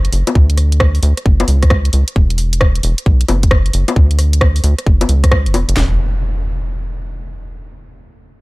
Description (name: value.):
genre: UK garage, two-step garage.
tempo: 133 BPM.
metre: 4/4.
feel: swing 65% on 16ths.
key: unclear.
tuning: A4 = 440 Hz.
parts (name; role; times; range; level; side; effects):
rubbery square bass; bass; 0.0-6.0 s; E1 to D2; -13 LUFS; equal; none.
garage drum kit; drums; 0.0-5.8 s; bongos, hi-hat, rim click; -18 LUFS; left 1 dB; overdrive.
garage drum kit; drums; 0.4-5.9 s; handclaps, kick drum, snare drum; -11 LUFS; equal; overdrive.
impact; sound effects; 5.8-7.6 s; none; -21 LUFS; equal; none.
room: little or no reverb.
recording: dry, gritty hardware recording.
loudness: -11 LUFS.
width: side -23 dB against mid.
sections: 0.0-5.8 A section; 5.8-7.6 B section.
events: none.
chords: none.